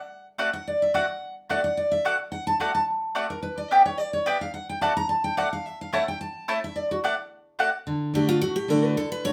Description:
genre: bluegrass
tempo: 216 BPM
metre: 4/4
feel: swing 54% on 8ths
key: D major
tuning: A4 = 444 Hz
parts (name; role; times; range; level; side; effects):
- picked steel-string acoustic guitar; accompaniment; 0.0-9.3 s; A2 to Bb5; -28 LUFS; equal; none
- mandolin; stabs; 0.4-7.7 s; A3 to A5; -25 LUFS; equal; none
- picked steel-string acoustic guitar; melody; 8.2-9.3 s; F4 to C#5; -28 LUFS; equal; none
room: wet studio reverb, RT60 0.5 s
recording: none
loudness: -26 LUFS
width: mono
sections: 0.0-7.9 A section; 7.9-9.3 A section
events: steel-string acoustic guitar solo 0.0-7.9, 7.9-9.3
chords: 0.0 D; 3.4 G; 4.5 D; 5.7 A; 6.8 D

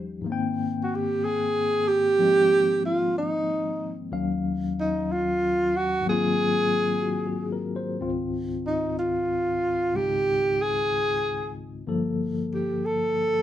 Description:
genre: jazz ballad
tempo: 62 BPM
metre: 4/4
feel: swing 68% on 8ths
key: unclear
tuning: A4 = 441 Hz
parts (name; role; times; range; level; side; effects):
- barky tine electric piano; accompaniment; 0.0-13.4 s; Db2 to G5; -28 LUFS; left 3 dB; medium tremolo
- breathy alto saxophone; melody; 0.8-13.4 s; Eb4 to A4; -23 LUFS; right 1 dB; none
room: moderate studio reverb, RT60 0.7 s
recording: minimal, uncompressed stereo recording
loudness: -23 LUFS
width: side -11 dB against mid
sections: 0.0-13.4 A section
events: none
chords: 0.2 Abmaj9; 4.1 Ebm7; 6.0 Ab13; 8.0 Dbmaj9; 11.9 Gm7

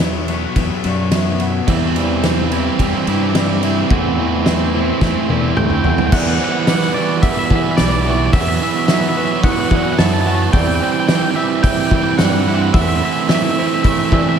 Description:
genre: post-rock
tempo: 109 BPM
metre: 4/4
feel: straight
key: E minor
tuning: A4 = 437 Hz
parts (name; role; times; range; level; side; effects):
- felt-muted upright piano; arpeggios; 0.0-14.4 s; B4 to G5; -28 LUFS; right 2 dB; slapback echo
- twangy electric guitar; arpeggios; 0.0-14.4 s; E2 to F#4; -29 LUFS; left 3 dB; ensemble chorus, slapback echo
- sludgy distorted guitar; riff; 0.0-6.1 s; A2 to C4; -22 LUFS; left 9 dB; overdrive, slapback echo
- growling fingered electric bass; bass; 0.0-14.4 s; B1 to E3; -20 LUFS; left 1 dB; overdrive
- loose indie drum kit; drums; 0.0-14.2 s; crash cymbal, hi-hat, kick drum, ride cymbal, snare drum, toms; -18 LUFS; equal; none
- crunchy overdriven guitar; riff; 1.7-14.4 s; E3 to E4; -18 LUFS; right 9 dB; none
- twangy electric guitar; melody; 5.6-14.4 s; D5 to A5; -21 LUFS; left 1 dB; slapback echo
room: moderate lush hall reverb, RT60 2.3 s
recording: big arena sound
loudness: -13 LUFS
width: side -7 dB against mid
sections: 0.0-6.1 A section; 6.1-14.4 B section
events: build-up 0.0-6.1; drum fill 5.0-6.1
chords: 0.0 Bsus4/E; 1.7 C/E; 3.9 Am/E; 6.1 Emadd9; 8.3 Bsus4/E; 10.5 C/E; 12.7 Am/E

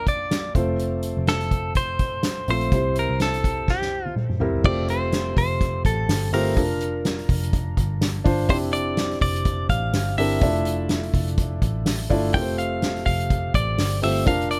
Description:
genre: piano-driven pop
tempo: 125 BPM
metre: 4/4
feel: swing 56% on 16ths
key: F major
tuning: A4 = 441 Hz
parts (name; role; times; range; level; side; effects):
- direct-recorded clean electric guitar; melody; 0.0-14.6 s; G4 to G5; -29 LUFS; equal; none
- felt-muted upright piano; accompaniment; 0.0-14.6 s; Bb2 to D5; -29 LUFS; equal; none
- vintage muted picked electric bass; bass; 0.0-14.6 s; F1 to C2; -29 LUFS; equal; none
- soft-mallet drum kit; drums; 0.1-14.6 s; crash cymbal, hi-hat, kick drum, snare drum, toms; -27 LUFS; equal; none
room: light reverb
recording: none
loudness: -23 LUFS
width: mono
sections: 0.0-4.6 A section; 4.6-14.6 B section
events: drum fill 3.7-4.6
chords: 0.0 Bb; 0.6 F; 2.7 C; 4.6 Fadd9; 6.6 Bb/F; 8.5 Cadd9/F; 10.4 Dmadd9/F; 12.3 Fadd9

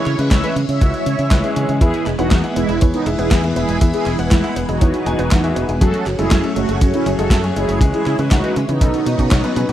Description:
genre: italo disco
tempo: 120 BPM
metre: 4/4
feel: straight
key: E major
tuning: A4 = 440 Hz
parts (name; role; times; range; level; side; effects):
- mellow synth brass; melody; 0.0-9.7 s; G#3 to E5; -21 LUFS; right 1 dB; chorus, tape echo
- string machine, full ensemble; sustained chords; 0.0-9.7 s; E3 to G#5; -24 LUFS; equal; phaser, ensemble chorus
- clear grand piano; stabs; 0.0-9.7 s; B2 to G#5; -24 LUFS; left 2 dB; none
- fingered electric bass; bass; 0.1-9.7 s; E1 to C#3; -21 LUFS; equal; none
- gated 80s digital drum machine; drums; 0.1-9.7 s; handclaps, hi-hat, snare drum; -23 LUFS; equal; gated reverb, gated reverb snare, overdrive
- kick drum; drums; 0.3-9.4 s; none; -15 LUFS; equal; none
- analog pluck; arpeggios; 1.8-9.7 s; C#3 to F#4; -27 LUFS; right 4 dB; chorus, tape echo
room: little or no reverb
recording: dry, close 1970s-style studio recording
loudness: -14 LUFS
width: side -12 dB against mid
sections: 0.0-9.7 A section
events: band accent 9.3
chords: 0.0 C#m; 1.8 E; 5.8 F#madd9; 7.8 C#m; 8.8 Badd9

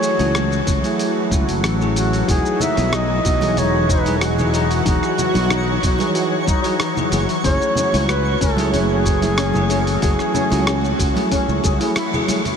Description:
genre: sunset chillout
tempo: 93 BPM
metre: 4/4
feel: straight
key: unclear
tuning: A4 = 440 Hz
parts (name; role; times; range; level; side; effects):
- mellow flugelhorn; melody; 0.0-10.9 s; F#4 to E5; -23 LUFS; equal; analog delay
- bell-like tine electric piano; accompaniment; 0.0-12.4 s; E3 to G#4; -24 LUFS; moving between left 4 dB and right 5 dB; auto-pan, ping-pong delay
- shimmering ambient pad; sustained chords; 0.0-12.6 s; E3 to F#5; -24 LUFS; equal; chorus, built-in reverb, phaser
- dusty soul sampler-style drum kit; drums; 0.0-12.6 s; hi-hat, rim click, shaker; -26 LUFS; equal; none
- sustaining fretless electric bass; bass; 0.2-11.8 s; E1 to C#2; -21 LUFS; equal; none
- electronic kick drum; drums; 0.7-11.8 s; none; -21 LUFS; equal; none
- steel pan; arpeggios; 2.3-12.4 s; C#4 to G#4; -25 LUFS; left 4 dB; ping-pong delay
- twinkling granular texture; texture; 2.7-12.6 s; C#5 to C#6; -30 LUFS; left 1 dB; built-in reverb
- congas; percussion; 2.6-12.6 s; none; -29 LUFS; right 2 dB; none
room: moderate huge ambient reverb, RT60 8.3 s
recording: dreamy mix soaked in reverb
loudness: -16 LUFS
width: side -7 dB against mid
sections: 0.0-12.6 A section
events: band accent 12.0-12.3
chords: 0.0 F#m9; 2.3 Emaj9; 7.1 F#m9

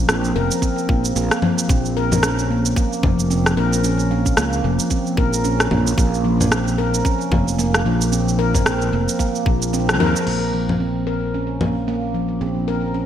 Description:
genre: organic downtempo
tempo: 112 BPM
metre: 4/4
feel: swing 59% on 16ths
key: unclear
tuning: A4 = 440 Hz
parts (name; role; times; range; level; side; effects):
- handpan; arpeggios; 0.0-13.1 s; F3 to Bb4; -20 LUFS; equal; low-pass filter, digital delay
- sustaining fretless electric bass; bass; 0.0-13.1 s; F1 to Eb2; -22 LUFS; equal; tube saturation, analog chorus, sidechain pumping
- organic electronic drum kit; drums; 0.1-11.7 s; cabasa, congas, crash cymbal, rim click; -22 LUFS; equal; none
- electronic kick drum; drums; 0.6-9.6 s; none; -19 LUFS; equal; none
room: wet lush hall reverb, RT60 1.9 s, digital ambience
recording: bright 1980s-style digital production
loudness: -16 LUFS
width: side -10 dB against mid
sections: 0.0-10.3 A section; 10.3-13.1 B section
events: band accent 9.9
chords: 0.0 Fsus4; 10.3 Bb5

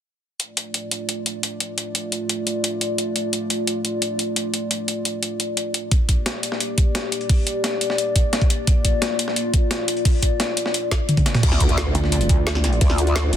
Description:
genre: dark technical drum and bass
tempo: 174 BPM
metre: 4/4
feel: straight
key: D minor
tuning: A4 = 440 Hz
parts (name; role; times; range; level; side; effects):
- dark analog pad; sustained chords; 0.4-13.4 s; A3 to D5; -25 LUFS; left 1 dB; lush chorus, sidechain pumping
- drum and bass drum kit; drums; 0.4-13.4 s; crash cymbal, hi-hat, snare drum, toms; -23 LUFS; equal; none
- breakbeat sampler-style drum kit; drums; 5.9-13.4 s; hi-hat, snare drum; -28 LUFS; equal; high-pass filter on hats, high-pass filter on snare, high-pass filter on room
- electronic kick drum; drums; 5.9-12.9 s; none; -18 LUFS; equal; none
- growl bass; bass; 11.4-13.4 s; F1 to D2; -20 LUFS; equal; chorus, tube saturation, sidechain pumping
- impact; sound effects; 11.4-12.8 s; none; -27 LUFS; equal; none
- pulsing pluck wobble bass; bass; 11.9-12.8 s; D2; -20 LUFS; equal; chorus
room: light reverb, digital ambience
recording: dense, heavily limited modern master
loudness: -19 LUFS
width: side -10 dB against mid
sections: 0.4-11.4 A section; 11.4-13.4 B section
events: drum fill 10.9-11.4; drop 11.4-13.4; impact 11.4-12.8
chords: 0.4 Dm; 5.9 Gm; 11.4 Dm

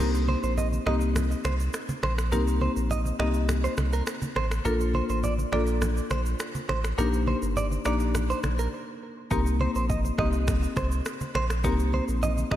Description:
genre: afrobeats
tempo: 103 BPM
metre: 4/4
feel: straight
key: C dorian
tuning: A4 = 440 Hz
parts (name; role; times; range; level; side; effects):
- marimba with medium mallets; accompaniment; 0.0-12.6 s; Bb3 to A4; -30 LUFS; left 4 dB; none
- direct-recorded clean electric guitar; riff; 0.0-12.6 s; Bb4 to Eb5; -32 LUFS; right 4 dB; lush chorus, analog delay
- warm sub bass; bass; 0.0-12.6 s; G1 to C2; -27 LUFS; equal; none
- afro-pop drum kit; drums; 0.1-12.6 s; finger snaps, kick drum, rim click, shaker; -34 LUFS; equal; none
- congas; percussion; 0.3-12.6 s; none; -36 LUFS; right 2 dB; none
room: light reverb, digital ambience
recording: none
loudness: -24 LUFS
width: side -12 dB against mid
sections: 0.0-12.6 A section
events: break 0.0-9.3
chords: 0.0 Cm7; 4.7 Bbmaj7; 7.0 Ebmaj7; 9.3 Cm7

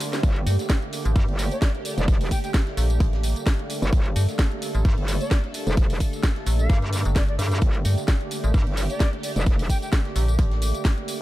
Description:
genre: bass house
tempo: 130 BPM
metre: 4/4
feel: swing 55% on 16ths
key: G minor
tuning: A4 = 435 Hz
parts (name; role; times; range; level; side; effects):
- sweeping resonant pad; sustained chords; 0.0-11.2 s; D3 to C5; -33 LUFS; right 2 dB; chorus, sidechain pumping
- house drum kit; drums; 0.0-11.2 s; hi-hat, snare drum, tambourine; -31 LUFS; equal; none
- oversized low-tuned drum kit; drums; 0.0-11.2 s; hi-hat, snare drum; -43 LUFS; right 2 dB; none
- deep dark ambient pad; texture; 0.0-11.2 s; G4 to D6; -35 LUFS; right 1 dB; chorus, built-in reverb, sidechain pumping
- metallic wobble bass; bass; 0.2-9.7 s; F1 to G2; -24 LUFS; equal; chorus, tube saturation, sidechain pumping
- electronic kick drum; drums; 0.2-11.0 s; none; -20 LUFS; equal; none
- metallic FM bass; bass; 0.5-10.7 s; G1 to G2; -21 LUFS; equal; overdrive, sidechain pumping
- silver concert flute; melody; 1.5-9.9 s; D5 to G5; -34 LUFS; left 2 dB; vintage 12-bit sampler grit, digital delay
room: small room ambience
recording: dark, warm production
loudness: -20 LUFS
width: side -16 dB against mid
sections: 0.0-11.2 A section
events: break 0.0; drum fill 0.0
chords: 0.0 Gmadd9

